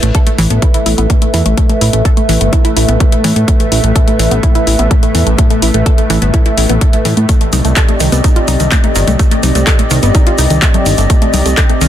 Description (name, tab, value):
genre	melodic techno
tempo	126 BPM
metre	4/4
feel	straight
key	A minor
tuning	A4 = 439 Hz
part	dark analog pad	sustained chords	0.0-11.9 s	A3 to E5	-17 LUFS	equal	chorus, sidechain pumping
part	wide unison pluck	arpeggios	0.0-11.9 s	Eb3 to A4	-17 LUFS	right 1 dB	sidechain pumping, tape echo
part	fat analog bass	bass	0.0-11.9 s	G1 to A2	-12 LUFS	equal	sidechain pumping
part	swarming drone	drone	1.8-11.9 s	A2 to A3	-24 LUFS	equal	built-in reverb, sidechain pumping
part	house drum kit	drums	0.0-11.9 s	congas, handclaps, hi-hat	-18 LUFS	left 4 dB	none
part	electronic kick drum	drums	0.1-11.7 s	none	-10 LUFS	equal	none
part	tube shaker	percussion	7.3-11.9 s	none	-23 LUFS	right 5 dB	none
room	little or no reverb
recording	dense, heavily limited modern master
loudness	-8 LUFS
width	side -11 dB against mid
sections	0.0-11.9 A section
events	none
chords	0.0 Asus2; 7.3 Cmadd9